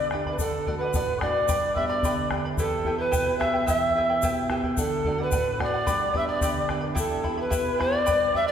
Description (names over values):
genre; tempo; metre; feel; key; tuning
andean folk, Andean ensemble; 109 BPM; 2/4; straight; E minor; A4 = 443 Hz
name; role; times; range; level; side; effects
bright reedy polished pan flute; melody; 0.0-8.5 s; A4 to E5; -25 LUFS; equal; none
breathy hollow quena; second line; 0.0-8.5 s; A5 to E6; -32 LUFS; right 3 dB; none
charango; accompaniment; 0.0-8.5 s; E4 to B5; -32 LUFS; equal; none
nylon-string guitar; accompaniment; 0.0-8.5 s; E2 to G4; -32 LUFS; right 2 dB; none
bombo; percussion; 0.1-8.5 s; none; -30 LUFS; left 1 dB; none
tube shaker; percussion; 0.4-8.2 s; none; -39 LUFS; left 5 dB; none
room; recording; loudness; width
wet concert hall reverb, RT60 2.1 s; recorded in a church or concert hall; -22 LUFS; side -8 dB against mid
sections
0.0-4.8 A section; 4.8-8.5 A section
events
none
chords
0.4 D; 1.5 G; 2.6 Em; 4.8 D; 5.9 G; 7.0 Em